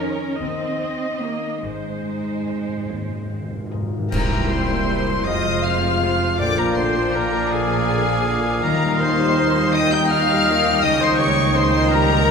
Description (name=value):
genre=classical, slow romantic movement for symphony orchestra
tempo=47-56 BPM (dotted quarters)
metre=6/8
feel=rubato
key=unclear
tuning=A4 = 441 Hz
part: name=warm chamber violin section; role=melody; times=0.0-12.3 s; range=Eb5 to G6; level=-24 LUFS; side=left 5 dB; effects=none
part: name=rich chamber violin section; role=second line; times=0.0-12.3 s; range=G4 to G5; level=-27 LUFS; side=left 2 dB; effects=none
part: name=rich chamber viola section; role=accompaniment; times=0.0-12.3 s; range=C3 to Eb5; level=-27 LUFS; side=equal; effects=none
part: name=concert harp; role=arpeggios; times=0.0-12.3 s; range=F2 to Bb5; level=-28 LUFS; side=left 4 dB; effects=none
part: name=rich chamber double bass section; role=bass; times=0.0-12.3 s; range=F1 to F2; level=-28 LUFS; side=right 4 dB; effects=none
part: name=warm studio cello section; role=bass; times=0.0-12.3 s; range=C2 to Db4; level=-28 LUFS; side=right 2 dB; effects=none
part: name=timpani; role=percussion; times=1.6-4.1, 8.6-9.7 s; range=Ab2 to Eb3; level=-31 LUFS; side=left 1 dB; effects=none
part: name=bright clarinet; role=second line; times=4.1-12.3 s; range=F5 to G5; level=-28 LUFS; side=equal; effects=none
part: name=flute section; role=second line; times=4.1-12.3 s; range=Ab4 to G5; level=-28 LUFS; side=left 3 dB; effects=none
part: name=warm oboe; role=second line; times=4.1-12.3 s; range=Ab4 to G5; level=-28 LUFS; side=right 2 dB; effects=none
part: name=mellow French horn section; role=sustained chords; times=4.1-12.3 s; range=Ab3 to F4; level=-26 LUFS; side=equal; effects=none
part: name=mellow trombone section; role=sustained chords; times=4.1-12.3 s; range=Bb2 to G3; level=-29 LUFS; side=right 3 dB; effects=none
part: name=mellow trumpet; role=stabs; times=4.1-12.3 s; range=C5 to Eb5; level=-28 LUFS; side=right 1 dB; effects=none
part: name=clash cymbals and concert bass drum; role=percussion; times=4.1-5.6 s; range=none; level=-30 LUFS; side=equal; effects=none
room=wet scoring stage reverb, RT60 1.6 s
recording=minimal, uncompressed stereo recording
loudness=-17 LUFS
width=side -6 dB against mid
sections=0.0-4.1 A section; 4.1-12.3 A section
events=timpani fill 1.6-4.1; band accent 4.1-4.9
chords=0.4 Eb7; 1.6 Ab; 4.1 C7; 5.3 Fm; 6.4 Bb7; 8.6 Eb; 10.8 Eb7/Db